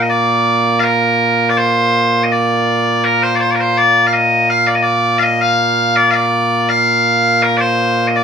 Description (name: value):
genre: scottish traditional, Scottish pipe music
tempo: 82 BPM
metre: 3/4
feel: straight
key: Bb major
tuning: A4 = 440 Hz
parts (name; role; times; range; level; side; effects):
- loud bright bagpipes; solo; 0.0-8.2 s; Bb2 to F5; -11 LUFS; equal; none
room: wet studio reverb, RT60 0.6 s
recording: band playing live in one room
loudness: -11 LUFS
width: side -7 dB against mid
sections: 0.0-8.2 A section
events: none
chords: none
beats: 0.10 | 0.84 1.57 2.30 | 3.03 3.76 4.50 | 5.23 5.96 6.69 | 7.42 8.15